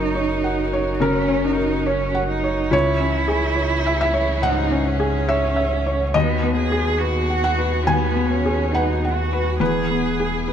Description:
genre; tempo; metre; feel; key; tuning
neoclassical piano and strings; 70 BPM; 4/4; rubato; C# dorian; A4 = 440 Hz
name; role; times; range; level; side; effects
warm cello; second line; 0.0-10.5 s; B3 to G#4; -24 LUFS; right 5 dB; none
felt-muted upright piano; accompaniment; 0.0-10.5 s; C#2 to G#5; -21 LUFS; left 1 dB; none
rich chamber string section; sustained chords; 0.0-10.5 s; E3 to A#4; -30 LUFS; left 2 dB; none
sub bass with octave; bass; 0.0-10.5 s; E1 to D#2; -24 LUFS; equal; none
room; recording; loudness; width
moderate recital hall reverb, RT60 1.7 s; none; -18 LUFS; side -8 dB against mid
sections
0.0-10.5 A section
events
none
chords
0.0 F#; 2.7 C#m; 6.1 B6/D#; 9.6 E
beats
0.17 1.02 1.87 | 2.73 3.58 4.43 5.29 | 6.14 7.01 7.88 8.74 | 9.60 10.47

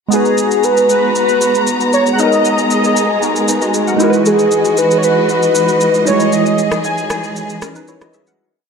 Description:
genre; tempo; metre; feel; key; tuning
amapiano; 116 BPM; 4/4; straight; G# minor; A4 = 440 Hz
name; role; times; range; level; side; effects
warm velvety synth lead; melody; 0.1-7.3 s; G#4 to G#5; -14 LUFS; equal; chorus, ping-pong delay
glassy digital keys; accompaniment; 0.1-8.5 s; G3 to F#5; -17 LUFS; right 1 dB; chorus
warm symphonic string section; sustained chords; 0.1-8.4 s; E3 to A#5; -18 LUFS; equal; none
electronic shaker and rim click; drums; 0.1-8.4 s; none; -24 LUFS; equal; none
room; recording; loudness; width
wet plate reverb, RT60 2.5 s; dreamy mix soaked in reverb; -11 LUFS; side -5 dB against mid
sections
0.1-8.4 breakdown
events
fade-out 6.3-8.4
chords
0.1 G#m9; 4.0 Emaj9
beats
| 0.12 0.64 1.15 1.67 | 2.19 2.71 3.22 3.74 | 4.26 4.77 5.29 5.81 | 6.33 6.84 7.36 7.88

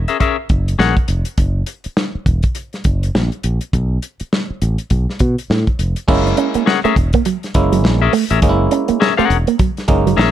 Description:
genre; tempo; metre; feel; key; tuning
funk; 102 BPM; 4/4; swing 60% on 16ths; F# mixolydian; A4 = 440 Hz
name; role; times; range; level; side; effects
modern bright fingered electric bass; bass; 0.0-10.3 s; E1 to B2; -17 LUFS; equal; none
clean electric guitar; accompaniment; 0.1-0.9, 6.7-10.3 s; C#4 to F#5; -17 LUFS; left 10 dB; none
warm soul drum kit; drums; 0.1-10.3 s; crash cymbal, hi-hat, kick drum, snare drum; -18 LUFS; equal; none
clav; stabs; 6.1-10.3 s; G#3 to E4; -18 LUFS; right 2 dB; plate reverb
electric guitar with an envelope filter; riff; 6.3-10.1 s; F#3 to C#4; -18 LUFS; right 10 dB; none
room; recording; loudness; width
light reverb; none; -14 LUFS; side -11 dB against mid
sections
0.0-6.1 A section; 6.1-10.3 B section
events
none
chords
0.0 F#9; 3.7 N.C.; 6.1 F#9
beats
0.20 0.79 | 1.38 1.97 2.55 3.14 | 3.73 4.32 4.91 5.50 | 6.08 6.67 7.26 7.84 | 8.43 9.01 9.60 10.18

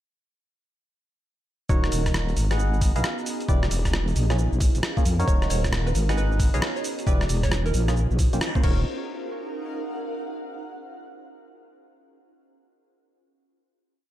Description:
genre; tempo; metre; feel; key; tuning
UK garage, two-step garage; 134 BPM; 4/4; swing 64% on 16ths; unclear; A4 = 437 Hz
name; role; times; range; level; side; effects
ethereal airy pad; sustained chords; 2.2-8.8 s; Cb4 to Bb5; -36 LUFS; right 1 dB; ensemble chorus, built-in reverb, sidechain pumping
percussive organ stab; stabs; 1.7-8.8 s; Bb3 to Gb5; -32 LUFS; equal; chorus, phaser, ping-pong delay
deep soft wobble bass; bass; 1.7-8.8 s; Eb1 to F2; -23 LUFS; equal; chorus, sidechain pumping
boom bap sampler-style drum kit; drums; 1.7-8.8 s; cabasa, crash cymbal, hi-hat, rim click; -30 LUFS; equal; none
electronic kick drum; drums; 1.7-8.7 s; none; -23 LUFS; equal; none
granular cloud pad; texture; 2.3-10.6 s; Eb4 to Gb5; -37 LUFS; right 1 dB; built-in reverb, sidechain pumping
hollow square pluck; melody; 5.3-8.8 s; Bb4 to Db5; -34 LUFS; right 4 dB; wide subtle chorus, ping-pong delay
room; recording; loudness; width
light reverb; none; -21 LUFS; side -13 dB against mid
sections
1.7-8.9 drop; 8.9-10.7 final chord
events
drop 1.7-8.9; band accent 8.4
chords
1.7 Ebm7; 2.4 Abm7; 3.5 Em7; 4.2 Bbm7; 5.3 Ebm7; 5.9 Abm7; 7.1 Em7; 7.7 Bbm7; 8.6 Ebm7; 8.9 Ebm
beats
| 1.70 2.14 2.59 3.04 | 3.49 3.93 4.38 4.83 | 5.28 5.72 6.17 6.62 | 7.07 7.52 7.96 8.41 | 8.86 9.31 9.76 10.20

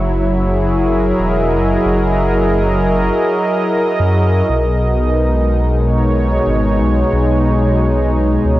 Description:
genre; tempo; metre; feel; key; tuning
IDM; 91 BPM; 4/4; straight; B major; A4 = 440 Hz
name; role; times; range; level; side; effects
warm analog pad; sustained chords; 0.0-8.6 s; B2 to D#5; -14 LUFS; equal; chorus, vintage 12-bit sampler grit, shimmer reverb
dark detuned saw bass; bass; 0.0-8.6 s; E1 to F#2; -16 LUFS; equal; none
room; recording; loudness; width
light reverb; dry, gritty hardware recording; -12 LUFS; side -16 dB against mid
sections
0.0-8.6 A section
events
none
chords
0.0 F#13; 4.5 B69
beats
0.54 1.20 | 1.86 2.52 3.18 3.84 | 4.50 5.15 5.81 6.47 | 7.13 7.79 8.45

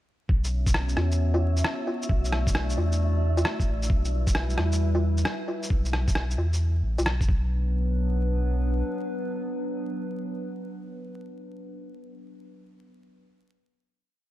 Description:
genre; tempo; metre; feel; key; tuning
future garage; 133 BPM; 4/4; swing 66% on 16ths; B minor; A4 = 440 Hz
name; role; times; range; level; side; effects
warbly tape-like pad; sustained chords; 0.6-11.9 s; F#3 to D5; -33 LUFS; equal; chorus, built-in reverb, sidechain pumping
warm sub bass; bass; 0.3-8.8 s; A1 to E2; -25 LUFS; equal; sidechain pumping
electronic kick drum; drums; 0.3-7.4 s; none; -24 LUFS; equal; none
wind-like tuned noise texture; texture; 0.6-5.7 s; E4 to E5; -39 LUFS; right 2 dB; built-in reverb
electronic shaker, rim click and woodblock; drums; 0.4-7.3 s; none; -29 LUFS; equal; none
room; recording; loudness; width
little or no reverb; vinyl crackle; -24 LUFS; side -14 dB against mid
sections
0.3-7.5 groove; 7.5-11.1 final hit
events
none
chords
0.3 Bsus2; 2.1 D/B; 3.9 Emadd9/B; 5.7 Asus2 (rootless); 7.3 Bm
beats
| 0.29 0.74 1.19 1.65 | 2.10 2.55 3.00 3.45 | 3.90 4.35 4.80 5.25 | 5.71 6.16 6.61 7.06 | 7.51 7.96 8.41 8.86 | 9.31 9.77 10.22 10.67

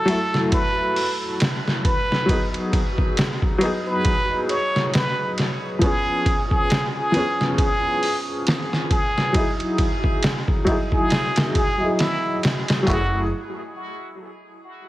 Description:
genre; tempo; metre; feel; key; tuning
trip hop; 68 BPM; 4/4; swing 57% on 16ths; F# dorian; A4 = 441 Hz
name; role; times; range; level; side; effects
trumpet with plunger mute; melody; 0.0-13.2 s; E4 to C#5; -25 LUFS; right 1 dB; tape echo
felt-muted upright piano; accompaniment; 0.0-13.2 s; E#3 to D#5; -24 LUFS; left 1 dB; tremolo, vintage 12-bit sampler grit, low-pass filter, tape echo
trip hop sampler-style drum kit; drums; 0.1-13.1 s; handclaps, hi-hat, kick drum, ride cymbal, snare drum; -22 LUFS; equal; none
upright bass; bass; 12.9-13.3 s; F#1; -26 LUFS; equal; none
room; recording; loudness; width
light reverb; heavily compressed radio sound; -19 LUFS; side -16 dB against mid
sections
0.0-12.9 A section; 12.9-14.9 B section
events
filter sweep on felt piano 0.0-12.9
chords
0.0 F#m7; 2.3 G#m7; 5.8 C#7; 9.3 Emaj9; 12.9 F#m9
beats
0.52 1.40 | 2.28 3.17 4.05 4.93 | 5.81 6.70 7.58 8.46 | 9.34 10.22 11.11 11.99 | 12.87

